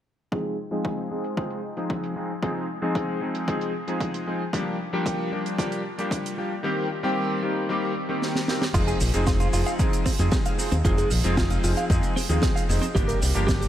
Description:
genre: nu-disco, nu disco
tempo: 114 BPM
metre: 4/4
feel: straight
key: F dorian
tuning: A4 = 441 Hz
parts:
  - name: clear electric grand piano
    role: accompaniment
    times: 0.3-13.7 s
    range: Eb3 to Ab4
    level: -26 LUFS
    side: left 1 dB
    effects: lush chorus, low-pass filter, tape echo
  - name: electronic kick drum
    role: drums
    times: 0.3-13.6 s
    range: none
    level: -26 LUFS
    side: equal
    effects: overdrive, high-pass filter on kick, studio ambience, high-pass filter on room
  - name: tight funk drum kit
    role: drums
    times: 0.3-13.7 s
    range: crash cymbal, hi-hat, rim click, shaker, snare drum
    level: -31 LUFS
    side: right 2 dB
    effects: low-pass filter on hats, studio ambience, low-pass filter on cymbals, low-pass filter on snare, low-pass filter on perc, low-pass filter on room
  - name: direct-recorded clean electric guitar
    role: riff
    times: 8.7-13.7 s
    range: F3 to F5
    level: -30 LUFS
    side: right 2 dB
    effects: analog chorus, tape echo
  - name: fingered electric bass with an envelope filter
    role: bass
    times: 8.7-13.7 s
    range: F1 to F2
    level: -24 LUFS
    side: equal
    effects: none
room: moderate lush hall reverb, RT60 2.6 s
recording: dreamy mix soaked in reverb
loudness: -23 LUFS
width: side -11 dB against mid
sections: 0.3-8.7 A section; 8.7-13.7 B section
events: filter sweep on electric grand piano 0.3-8.7; drum fill 8.2-8.7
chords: 0.3 Fm7; 4.5 Gm7; 6.6 Cm7; 8.7 Fm7; 13.0 Gm7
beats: | 0.33 0.85 1.38 1.91 | 2.43 2.96 3.48 4.01 | 4.54 5.06 5.59 6.12 | 6.64 7.17 7.69 8.22 | 8.75 9.27 9.80 10.33 | 10.85 11.38 11.90 12.43 | 12.96 13.48

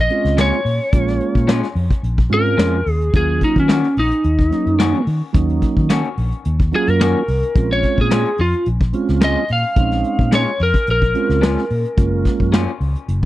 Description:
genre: straight-eighth soul blues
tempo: 109 BPM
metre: 4/4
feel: swing 53% on 16ths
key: Bb minor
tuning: A4 = 441 Hz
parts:
  - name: lightly driven lead guitar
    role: melody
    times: 0.0-12.5 s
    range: Db4 to F5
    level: -19 LUFS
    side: left 1 dB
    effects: none
  - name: vintage muted fingered electric bass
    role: bass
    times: 0.0-13.3 s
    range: Gb1 to Eb3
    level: -19 LUFS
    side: equal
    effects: none
  - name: mellow tonewheel organ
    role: accompaniment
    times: 0.1-12.7 s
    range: Gb3 to F4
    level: -20 LUFS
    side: right 6 dB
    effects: slow rotary speaker
  - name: vintage brush drum kit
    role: drums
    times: 0.1-13.3 s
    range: hi-hat, kick drum, snare drum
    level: -17 LUFS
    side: equal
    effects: none
  - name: electric guitar through a small old amp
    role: stabs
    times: 0.4-12.7 s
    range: Bb2 to Gb4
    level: -25 LUFS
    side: left 6 dB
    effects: spring reverb
room: little or no reverb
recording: dry, close 1970s-style studio recording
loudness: -14 LUFS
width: side -15 dB against mid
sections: 0.0-13.3 A section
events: none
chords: 0.0 Bbm7; 3.1 Ebm7; 7.6 Bbm7; 12.0 Gbmaj7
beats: 0.38 | 0.93 1.48 2.03 2.58 | 3.14 3.69 4.24 4.79 | 5.35 5.90 6.45 7.00 | 7.56 8.11 8.66 9.21 | 9.77 10.32 10.87 11.43 | 11.98 12.53 13.08

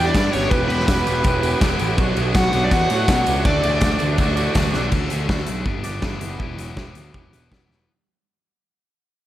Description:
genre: indie rock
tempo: 163 BPM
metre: 4/4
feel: straight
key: unclear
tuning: A4 = 440 Hz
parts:
  - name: crunchy overdriven guitar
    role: melody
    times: 0.0-4.5 s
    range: B4 to F#5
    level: -24 LUFS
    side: equal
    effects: analog delay
  - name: tine electric piano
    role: second line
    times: 0.0-4.5 s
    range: B3 to F#4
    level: -31 LUFS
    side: left 2 dB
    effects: none
  - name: percussive tonewheel organ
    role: sustained chords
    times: 0.0-4.9 s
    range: D4 to E6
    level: -34 LUFS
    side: equal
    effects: none
  - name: scooped high-gain guitar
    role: riff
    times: 0.0-7.9 s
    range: E3 to G4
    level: -28 LUFS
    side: left 6 dB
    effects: distortion
  - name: twangy electric guitar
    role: riff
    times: 0.0-7.9 s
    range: B2 to D5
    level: -29 LUFS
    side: right 4 dB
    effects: wide subtle chorus
  - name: fuzz picked electric bass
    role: bass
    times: 0.0-7.9 s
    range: E1 to B2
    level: -23 LUFS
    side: equal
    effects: overdrive
  - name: big rock drum kit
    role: drums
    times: 0.1-7.8 s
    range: crash cymbal, hi-hat, kick drum, ride cymbal, snare drum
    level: -21 LUFS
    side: equal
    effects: none
  - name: tambourine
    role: percussion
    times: 0.1-4.8 s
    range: none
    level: -38 LUFS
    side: right 5 dB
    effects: none
room: light reverb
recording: none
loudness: -17 LUFS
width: side -13 dB against mid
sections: 0.0-4.9 A section; 4.9-7.9 B section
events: drum fill 4.7, 7.7; fade-out 4.9-7.9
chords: 0.0 G6; 0.5 Emadd9; 2.0 Bmadd9; 3.5 Dadd9; 4.9 D; 5.7 G6; 6.4 Emadd9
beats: 0.15 | 0.52 0.89 1.25 1.62 | 1.99 2.35 2.72 3.09 | 3.45 3.82 4.19 4.56 | 4.92 5.29 5.66 6.03 | 6.40 6.77 7.14 7.51

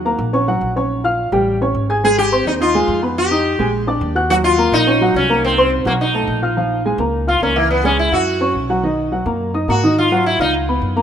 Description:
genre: Afro-Cuban jazz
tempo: 212 BPM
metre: 4/4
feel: straight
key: Bb minor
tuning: A4 = 439 Hz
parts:
  - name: upright bass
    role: bass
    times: 0.0-11.0 s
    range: Ab1 to Ab2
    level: -22 LUFS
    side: left 1 dB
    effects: none
  - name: warm upright piano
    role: accompaniment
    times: 0.1-11.0 s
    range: D#3 to Ab6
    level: -17 LUFS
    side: equal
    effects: none
  - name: sitar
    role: melody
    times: 2.0-10.5 s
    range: Bb3 to Ab4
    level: -17 LUFS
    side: left 1 dB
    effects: none
room: light reverb, small room ambience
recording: rough home demo mix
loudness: -14 LUFS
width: side -9 dB against mid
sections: 0.0-6.6 A section; 6.6-11.0 B section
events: sitar solo 6.6-11.0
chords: 0.0 Ebm7; 0.9 Bbm; 1.5 A7; 2.0 Abmaj7; 3.2 Fm7b5; 3.7 Bb7; 4.3 Ebm7; 5.4 Bbsus2; 6.0 B7; 6.6 Bbm7; 7.7 Dbm; 8.3 Gb5; 8.8 Bmaj7; 10.0 Ab5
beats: 0.05 0.33 0.62 | 0.90 1.18 1.47 1.75 | 2.03 2.32 2.60 2.88 | 3.17 3.45 3.73 4.01 | 4.30 4.58 4.87 5.15 | 5.43 5.71 6.00 6.28 | 6.57 6.85 7.13 7.42 | 7.70 7.98 8.27 8.55 | 8.83 9.12 9.40 9.68 | 9.97 10.25 10.54 10.82

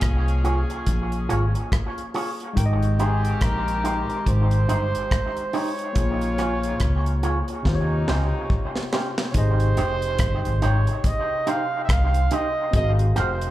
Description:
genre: lovers rock reggae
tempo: 71 BPM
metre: 4/4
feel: swing 60% on 16ths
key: Ab major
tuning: A4 = 439 Hz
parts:
  - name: clear horn section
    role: second line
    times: 0.0-8.9 s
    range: C3 to Ab4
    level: -35 LUFS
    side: left 2 dB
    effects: slapback echo
  - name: tine electric piano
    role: accompaniment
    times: 0.0-13.5 s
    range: C3 to G5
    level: -30 LUFS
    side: left 1 dB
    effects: medium stereo tremolo
  - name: vintage muted fingered electric bass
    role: bass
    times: 0.0-13.5 s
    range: F1 to Eb2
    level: -21 LUFS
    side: equal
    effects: none
  - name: deep reggae drum kit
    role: drums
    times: 0.0-13.5 s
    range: hi-hat, kick drum, rim click, snare drum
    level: -25 LUFS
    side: equal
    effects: none
  - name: electric guitar with an envelope filter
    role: stabs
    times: 0.4-13.3 s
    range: Db4 to F5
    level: -29 LUFS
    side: right 2 dB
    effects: wide subtle chorus, dub echo, slapback echo
  - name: warm flugelhorn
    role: melody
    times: 3.0-13.5 s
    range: Ab4 to F5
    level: -28 LUFS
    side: right 2 dB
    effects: tape echo, slapback echo
room: small room reverb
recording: live gig heard through the venue's PA, club ambience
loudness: -20 LUFS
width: side -14 dB against mid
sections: 0.0-9.3 A section; 9.3-13.5 B section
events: drum fill 7.7-9.3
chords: 0.0 Bbm7; 2.6 Abmaj7; 6.0 Bbm7; 7.7 Eb13; 9.3 Abmaj7; 12.7 Ab13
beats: 0.02 0.87 1.72 | 2.57 3.41 4.26 5.11 | 5.96 6.81 7.65 8.50 | 9.35 10.20 11.04 11.89 | 12.74

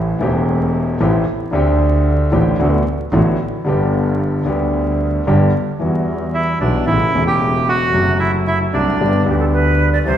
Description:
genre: tango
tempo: 113 BPM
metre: 4/4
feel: rubato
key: G major, E minor from 5.8 s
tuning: A4 = 441 Hz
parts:
  - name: warm concert grand piano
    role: accompaniment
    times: 0.0-10.2 s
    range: E1 to G4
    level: -17 LUFS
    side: left 1 dB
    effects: none
  - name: clear double bass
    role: bass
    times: 0.0-10.2 s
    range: E1 to E2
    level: -19 LUFS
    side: right 1 dB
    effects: none
  - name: bandoneon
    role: melody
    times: 6.3-9.2 s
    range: D4 to G4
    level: -18 LUFS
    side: right 3 dB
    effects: none
  - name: bright silver concert flute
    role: second line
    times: 9.3-10.2 s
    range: G4 to D5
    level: -19 LUFS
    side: right 2 dB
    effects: none
room: wet recital hall reverb, RT60 1.5 s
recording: recorded in a church or concert hall, vinyl crackle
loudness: -14 LUFS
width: side -10 dB against mid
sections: 0.0-5.8 A section; 5.8-10.2 B section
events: none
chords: 0.0 Am7; 1.5 D7sus4; 2.6 D6; 3.7 G; 5.8 Emadd9; 6.9 A; 7.9 F#dim; 9.0 G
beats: 0.48 1.01 | 1.54 2.07 2.60 3.12 | 3.66 4.19 4.72 5.26 | 5.80 6.34 6.87 7.41 | 7.94 8.47 9.00 9.53 | 10.06

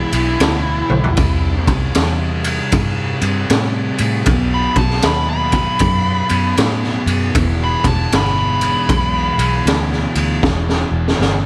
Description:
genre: blues rock power trio and southern rock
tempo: 78 BPM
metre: 4/4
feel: swing 64% on 8ths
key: E minor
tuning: A4 = 440 Hz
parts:
  - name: nasal lead guitar with a parked wah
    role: melody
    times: 0.0-9.9 s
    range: E4 to B5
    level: -23 LUFS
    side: equal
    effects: overdrive
  - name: fuzz guitar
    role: riff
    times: 0.0-11.5 s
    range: E2 to C4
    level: -25 LUFS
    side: equal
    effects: distortion
  - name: vintage muted fingered electric bass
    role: bass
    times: 0.0-11.5 s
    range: E1 to A2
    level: -22 LUFS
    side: equal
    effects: none
  - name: raw garage drum kit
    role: drums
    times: 0.1-11.4 s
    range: kick drum, ride cymbal, snare drum, toms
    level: -20 LUFS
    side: equal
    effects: none
room: small room ambience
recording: none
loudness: -16 LUFS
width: mono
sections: 0.0-11.5 A section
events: lead electric guitar solo 0.0-11.5; drum fill 0.8-1.2, 10.4-11.5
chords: 0.0 E7(no3); 1.2 C; 4.3 B7; 7.4 Em7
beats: 0.41 | 1.18 1.96 2.73 3.50 | 4.27 5.04 5.81 6.58 | 7.35 8.12 8.89 9.66 | 10.43 11.20

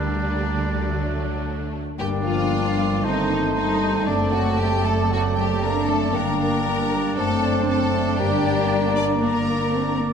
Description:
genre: classical, dramatic, fast romantic movement for symphony orchestra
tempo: 116 BPM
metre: 4/4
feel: straight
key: G minor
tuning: A4 = 441 Hz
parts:
  - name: warm symphonic violin section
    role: melody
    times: 0.0-10.0 s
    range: D5 to D6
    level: -34 LUFS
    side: left 4 dB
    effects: none
  - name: bright symphonic violin section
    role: second line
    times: 0.0-10.0 s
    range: A3 to D5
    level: -29 LUFS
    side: left 3 dB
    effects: none
  - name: warm oboe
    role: second line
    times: 0.0-10.1 s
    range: D4 to D5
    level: -31 LUFS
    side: right 3 dB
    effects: none
  - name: rich symphonic viola section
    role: accompaniment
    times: 0.0-10.1 s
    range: F#3 to D4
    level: -31 LUFS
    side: right 2 dB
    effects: none
  - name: concert harp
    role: arpeggios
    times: 0.0-10.1 s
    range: F#2 to Bb4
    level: -29 LUFS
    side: left 6 dB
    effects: none
  - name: dark symphonic cello section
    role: bass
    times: 0.0-10.1 s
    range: D3 to D4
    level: -29 LUFS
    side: right 2 dB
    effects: none
  - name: rich symphonic double bass section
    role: bass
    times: 0.0-10.1 s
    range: F#1 to D2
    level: -27 LUFS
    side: right 3 dB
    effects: none
  - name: mellow clarinet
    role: second line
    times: 2.0-9.9 s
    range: C4 to Eb4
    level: -31 LUFS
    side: right 1 dB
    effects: none
  - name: mellow hollow concert flute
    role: second line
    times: 2.0-10.0 s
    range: G5 to Bb5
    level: -30 LUFS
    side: equal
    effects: none
  - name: dark bassoon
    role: accompaniment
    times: 2.0-10.0 s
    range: A3 to C4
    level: -30 LUFS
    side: right 1 dB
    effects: none
  - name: dark French horn section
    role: sustained chords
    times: 2.0-10.0 s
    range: D3 to D4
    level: -28 LUFS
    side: left 4 dB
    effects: none
room: wet concert hall reverb, RT60 1.9 s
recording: minimal, uncompressed stereo recording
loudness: -19 LUFS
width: side -7 dB against mid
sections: 0.0-2.0 A section; 2.0-10.1 B section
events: none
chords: 0.0 Gm/D; 0.9 D; 2.0 Gm; 3.0 Am7b5/G; 4.1 D7/F#; 6.1 Gm; 7.2 D7/F#; 8.2 Gm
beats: 0.34 0.90 1.45 | 1.99 2.52 3.04 3.56 | 4.07 4.59 5.11 5.63 | 6.14 6.65 7.17 7.69 | 8.20 8.71 9.22 9.74

